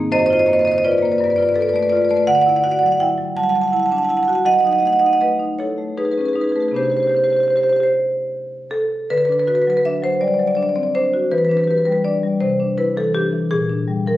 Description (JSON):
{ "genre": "classical, contemporary piece for solo marimba", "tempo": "54 BPM (dotted quarters)", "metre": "6/8", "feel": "rubato", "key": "unclear", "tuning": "A4 = 439 Hz", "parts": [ { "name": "marimba with medium hard mallets", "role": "solo", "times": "0.0-14.2 s", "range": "F#2 to A5", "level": "-15 LUFS", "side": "equal", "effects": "none" } ], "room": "moderate large studio reverb, RT60 1.3 s", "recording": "recorded on a phone in the room, studio reverb, compression", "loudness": "-15 LUFS", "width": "side -14 dB against mid", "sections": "0.0-9.1 A section; 9.1-14.2 A section", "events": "none", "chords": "0.1 F#maj7#11; 1.2 G9; 2.3 Dadd9; 4.5 F#m6; 6.8 Csus2; 9.1 D6; 11.3 Em7; 12.4 Cadd9; 13.5 Bb13" }